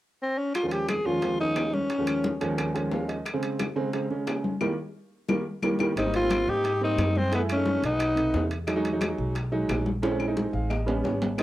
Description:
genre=Afro-Cuban jazz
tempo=177 BPM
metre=4/4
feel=straight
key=unclear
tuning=A4 = 444 Hz
part: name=growling alto saxophone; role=melody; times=0.2-2.4, 6.0-8.5, 11.4 s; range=Cb4 to Ab4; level=-26 LUFS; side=left 1 dB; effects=cassette tape
part: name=claves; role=percussion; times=0.5-11.4 s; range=none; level=-37 LUFS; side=left 5 dB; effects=none
part: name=congas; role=percussion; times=0.5-11.4 s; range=none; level=-33 LUFS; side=left 2 dB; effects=none
part: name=timbales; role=percussion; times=0.5-11.4 s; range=none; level=-34 LUFS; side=right 3 dB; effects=none
part: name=warm upright piano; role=accompaniment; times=0.6-11.4 s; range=Eb2 to Ab5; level=-29 LUFS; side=right 2 dB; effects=cassette tape
part: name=bongos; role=percussion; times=0.6-11.4 s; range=none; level=-39 LUFS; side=left 6 dB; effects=none
part: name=clear tenor saxophone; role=second line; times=6.0-8.5, 11.4 s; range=Ab3 to Eb4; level=-36 LUFS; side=left 4 dB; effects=cassette tape
part: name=upright bass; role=bass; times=6.0-11.4 s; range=Ab1 to Ab2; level=-30 LUFS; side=equal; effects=none
room=light reverb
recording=home recording on cassette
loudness=-24 LUFS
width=side -15 dB against mid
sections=0.5-6.0 A section; 6.0-11.4 B section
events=upright piano fill 2.6-3.3, 10.4-11.4; band accent 4.6-6.0; drum fill 5.1-6.0, 10.0-11.4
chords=0.0 N.C.; 0.5 Eb7sus4; 3.3 Abadd11/Db; 4.6 Eb; 6.0 Abmaj9; 7.3 Gbm9; 8.0 B7b9; 8.7 Emaj9; 10.0 Bbm9; 10.7 A9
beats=0.21 | 0.55 0.89 1.23 1.56 | 1.90 2.24 2.58 2.92 | 3.26 3.60 3.94 4.28 | 4.61 4.95 5.29 5.63 | 5.97 6.31 6.64 6.98 | 7.32 7.66 8.00 8.34 | 8.68 9.01 9.35 9.69 | 10.03 10.37 10.71 11.04 | 11.38

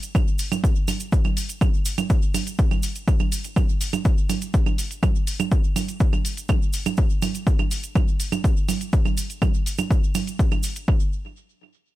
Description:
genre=techno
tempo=123 BPM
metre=4/4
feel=straight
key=none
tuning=none
part: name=electronic hi-hat, congas and claves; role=drums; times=0.0-10.9 s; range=none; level=-27 LUFS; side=right 6 dB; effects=sidechain pumping on hats, sidechain pumping on perc, tape echo
part: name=cabasa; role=percussion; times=0.0-10.9 s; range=none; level=-34 LUFS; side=right 5 dB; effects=tape echo
part: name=electronic kick drum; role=drums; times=0.1-11.0 s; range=none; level=-20 LUFS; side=equal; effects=none
room=digital ambience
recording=echo-heavy mix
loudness=-20 LUFS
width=side -16 dB against mid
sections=0.0-10.9 A section; 10.9-12.0 B section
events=drop 0.0-10.9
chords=none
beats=0.15 0.64 | 1.13 1.61 2.10 2.59 | 3.08 3.56 4.05 4.54 | 5.03 5.52 6.00 6.49 | 6.98 7.47 7.96 8.44 | 8.93 9.42 9.91 10.39 | 10.88

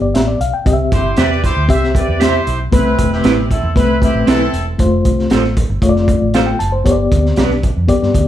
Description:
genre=uptempo 1960s-style soul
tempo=116 BPM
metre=4/4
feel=straight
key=C major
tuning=A4 = 440 Hz
part: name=mellow reed electric piano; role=accompaniment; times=0.0-8.3 s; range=G2 to A5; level=-16 LUFS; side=left 3 dB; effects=fast tremolo
part: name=vintage muted fingered electric bass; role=bass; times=0.0-8.2 s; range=E1 to G2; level=-18 LUFS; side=right 1 dB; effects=none
part: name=crunchy breakbeat drum kit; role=drums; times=0.1-8.3 s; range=hi-hat, kick drum, snare drum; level=-16 LUFS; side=right 1 dB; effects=none
part: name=clear horn section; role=second line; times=0.9-4.6 s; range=C4 to E5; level=-20 LUFS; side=right 1 dB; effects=none
part: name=clean electric guitar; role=stabs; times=1.2-7.5 s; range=C4 to E5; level=-19 LUFS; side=right 5 dB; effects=tremolo
room=moderate large studio reverb, RT60 1.1 s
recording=band playing live in one room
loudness=-12 LUFS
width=side -12 dB against mid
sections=0.0-8.3 A section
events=none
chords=0.0 G; 0.7 C; 2.7 Amadd9; 4.8 F; 6.9 G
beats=0.14 | 0.66 1.18 1.69 2.21 | 2.73 3.24 3.76 4.27 | 4.79 5.31 5.82 6.34 | 6.86 7.37 7.89

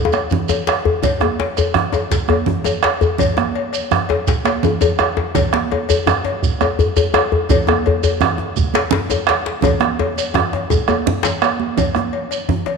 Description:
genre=west african traditional, West African drum ensemble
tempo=112 BPM (dotted quarters)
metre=12/8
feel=straight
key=none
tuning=none
part: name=bombo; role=percussion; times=0.1-12.1 s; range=none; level=-20 LUFS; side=right 6 dB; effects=none
part: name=congas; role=percussion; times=0.1-12.8 s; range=none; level=-23 LUFS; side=right 9 dB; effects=none
part: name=cowbell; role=percussion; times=0.1-12.8 s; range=none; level=-24 LUFS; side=left 6 dB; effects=none
part: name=djembe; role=percussion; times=0.1-12.8 s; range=none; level=-25 LUFS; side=left 4 dB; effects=none
part: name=djembe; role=percussion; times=0.1-11.4 s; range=none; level=-19 LUFS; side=left 4 dB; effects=none
part: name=shekere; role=percussion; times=0.1-12.5 s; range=none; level=-27 LUFS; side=right 5 dB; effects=none
room=wet echo chamber reverb, RT60 2.3 s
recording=1960s-style stereo with parts hard left and right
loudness=-15 LUFS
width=side -5 dB against mid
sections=0.0-11.8 A section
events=drum fill 9.6-11.8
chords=none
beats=0.50 | 1.04 1.58 2.12 2.66 | 3.20 3.74 4.28 4.82 | 5.36 5.89 6.43 6.97 | 7.50 8.04 8.58 9.11 | 9.64 10.18 10.71 11.25 | 11.78 12.31

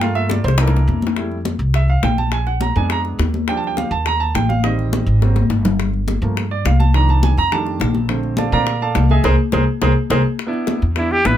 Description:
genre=Afro-Cuban jazz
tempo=208 BPM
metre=4/4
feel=straight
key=F major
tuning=A4 = 443 Hz
part: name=warm baby grand piano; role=accompaniment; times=0.0-11.4 s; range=D3 to Bb5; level=-21 LUFS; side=right 4 dB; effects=none
part: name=upright bass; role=bass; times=0.0-11.4 s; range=G1 to Bb2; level=-17 LUFS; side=equal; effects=none
part: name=bongos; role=percussion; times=0.0-11.4 s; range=none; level=-26 LUFS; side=left 5 dB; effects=none
part: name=congas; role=percussion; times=0.0-11.4 s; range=none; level=-23 LUFS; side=left 5 dB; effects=none
part: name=breathy trumpet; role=melody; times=11.0-11.4 s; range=E4 to B4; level=-16 LUFS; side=equal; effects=none
room=light reverb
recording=none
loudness=-15 LUFS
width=side -11 dB against mid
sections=0.0-1.2 A section; 1.2-10.4 A section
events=grand piano solo 0.0-10.4; drum fill 0.3-1.2, 5.2-5.8; band accent 9.2-10.4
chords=0.0 Gm7; 0.6 C13; 1.2 Fmaj9; 2.3 Bb7b9; 3.5 Ebmaj9; 4.6 Am7b5; 5.2 Ab9; 5.8 Gm9; 6.9 Cm11; 7.5 F13; 8.1 Bbmaj7; 9.2 Abadd9/C; 10.4 Asus4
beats=| 0.02 0.31 0.60 0.88 | 1.17 1.46 1.75 2.04 | 2.33 2.61 2.90 3.19 | 3.48 3.77 4.06 4.35 | 4.63 4.92 5.21 5.50 | 5.79 6.08 6.37 6.65 | 6.94 7.23 7.52 7.80 | 8.09 8.38 8.67 8.96 | 9.24 9.53 9.82 10.11 | 10.40 10.68 10.97 11.26

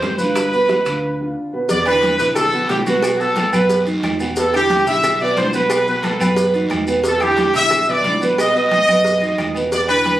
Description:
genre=latin, salsa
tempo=179 BPM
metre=4/4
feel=straight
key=E minor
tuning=A4 = 440 Hz
part: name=clear trumpet section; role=melody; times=0.0-10.2 s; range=F#4 to E5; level=-16 LUFS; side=equal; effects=none
part: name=dark grand piano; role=accompaniment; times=0.0-10.2 s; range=B2 to B4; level=-21 LUFS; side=right 2 dB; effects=none
part: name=hollow-body short-scale fingered electric bass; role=bass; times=0.0-10.2 s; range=B1 to G2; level=-26 LUFS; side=equal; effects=none
part: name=bongos and cowbell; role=percussion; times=0.0-10.2 s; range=none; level=-26 LUFS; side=left 2 dB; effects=none
part: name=congas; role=percussion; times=0.0-10.2 s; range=none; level=-29 LUFS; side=equal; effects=none
part: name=guiro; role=percussion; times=0.0-10.2 s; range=none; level=-30 LUFS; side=right 1 dB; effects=none
part: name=maracas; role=percussion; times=0.0-10.2 s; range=none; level=-34 LUFS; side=equal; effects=none
part: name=timbales and agogo bells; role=percussion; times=0.0-10.2 s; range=none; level=-28 LUFS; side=right 2 dB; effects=none
part: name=claves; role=percussion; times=0.4-10.1 s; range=none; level=-33 LUFS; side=left 2 dB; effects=none
room=moderate studio reverb, RT60 0.7 s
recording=recorded on a phone in the room, club reverb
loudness=-14 LUFS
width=side -13 dB against mid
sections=0.0-1.7 A section; 1.7-10.2 B section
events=break 1.0-1.7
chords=0.4 G7; 1.7 E5; 3.0 B7; 4.4 Em7; 5.7 B; 7.0 Em7; 8.4 B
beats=0.02 | 0.35 0.69 1.02 1.36 | 1.69 2.03 2.36 2.70 | 3.03 3.37 3.70 4.04 | 4.37 4.70 5.04 5.37 | 5.71 6.04 6.38 6.71 | 7.04 7.38 7.71 8.05 | 8.38 8.72 9.05 9.39 | 9.72 10.06

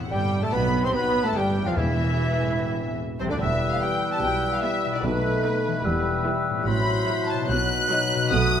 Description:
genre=classical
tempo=146 BPM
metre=4/4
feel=straight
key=A minor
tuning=A4 = 438 Hz
part: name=rich studio violin section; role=melody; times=0.0-8.6 s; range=B4 to F#6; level=-31 LUFS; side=left 3 dB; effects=none
part: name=rich symphonic violin section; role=second line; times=0.0-8.6 s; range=B4 to F#6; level=-32 LUFS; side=equal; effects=none
part: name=concert harp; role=arpeggios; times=0.0-8.6 s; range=E2 to B4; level=-32 LUFS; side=left 5 dB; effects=none
part: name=clear oboe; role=second line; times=0.1-8.6 s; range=C4 to C5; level=-32 LUFS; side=right 1 dB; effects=none
part: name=mellow clarinet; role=second line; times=0.1-8.6 s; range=C4 to C5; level=-34 LUFS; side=right 1 dB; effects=none
part: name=silver concert flute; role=second line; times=0.1-8.6 s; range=C5 to F#6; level=-31 LUFS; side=left 2 dB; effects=none
part: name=mellow bassoon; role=accompaniment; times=0.1-8.6 s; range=C3 to C4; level=-31 LUFS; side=right 1 dB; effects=none
part: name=rich symphonic viola section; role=accompaniment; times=0.1-8.2 s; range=C3 to G4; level=-35 LUFS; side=right 2 dB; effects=none
part: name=mellow French horn section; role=sustained chords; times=0.1-8.6 s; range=C3 to F#4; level=-31 LUFS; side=left 3 dB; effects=none
part: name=dark symphonic cello section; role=bass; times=0.1-8.6 s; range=C2 to C3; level=-31 LUFS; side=right 2 dB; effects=none
part: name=rich symphonic double bass section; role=bass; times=0.1-8.6 s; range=E1 to C2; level=-29 LUFS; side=right 3 dB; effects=none
part: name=timpani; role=percussion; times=1.8-2.3, 5.0-5.6 s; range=E2 to B2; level=-31 LUFS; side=left 1 dB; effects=none
room=wet scoring stage reverb, RT60 1.6 s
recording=none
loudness=-21 LUFS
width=side -8 dB against mid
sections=0.1-8.6 A section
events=none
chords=0.1 Am; 1.8 E7; 2.6 Am/E; 3.4 Em; 5.0 B7; 5.8 Em; 6.7 F#m7b5/A; 7.5 B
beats=| 0.12 0.54 0.95 1.36 | 1.77 2.18 2.58 3.00 | 3.41 3.82 4.23 4.63 | 5.04 5.44 5.85 6.26 | 6.67 7.08 7.50 7.92 | 8.33

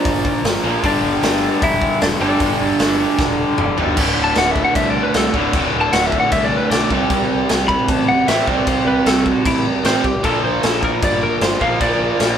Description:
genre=punk rock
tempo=153 BPM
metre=4/4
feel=straight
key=unclear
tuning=A4 = 438 Hz
part: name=lightly driven lead guitar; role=melody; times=0.0-12.4 s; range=D4 to B5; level=-20 LUFS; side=left 1 dB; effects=none
part: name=distorted electric guitar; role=riff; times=0.0-12.4 s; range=D2 to C4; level=-22 LUFS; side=left 5 dB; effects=distortion
part: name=raw garage guitar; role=riff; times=0.0-12.4 s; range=D2 to C4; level=-20 LUFS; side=right 5 dB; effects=overdrive
part: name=fuzz picked electric bass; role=bass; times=0.1-12.4 s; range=D1 to C2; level=-25 LUFS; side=equal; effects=overdrive
part: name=raw garage drum kit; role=drums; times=0.1-12.3 s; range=crash cymbal, hi-hat, kick drum, snare drum, toms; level=-20 LUFS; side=equal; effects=none
room=light reverb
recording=band playing live in one room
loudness=-14 LUFS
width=side -8 dB against mid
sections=0.0-4.0 A section; 4.0-12.4 B section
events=drum fill 3.2-4.0; lead electric guitar solo 4.0-12.4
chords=0.0 Bb; 0.8 G5; 4.0 D5; 6.9 C5; 10.2 Bb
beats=0.06 0.45 | 0.84 1.23 1.62 2.02 | 2.41 2.80 3.19 3.58 | 3.97 4.36 4.76 5.15 | 5.54 5.93 6.32 6.71 | 7.11 7.50 7.89 8.28 | 8.67 9.06 9.46 9.85 | 10.24 10.63 11.03 11.42 | 11.81 12.20

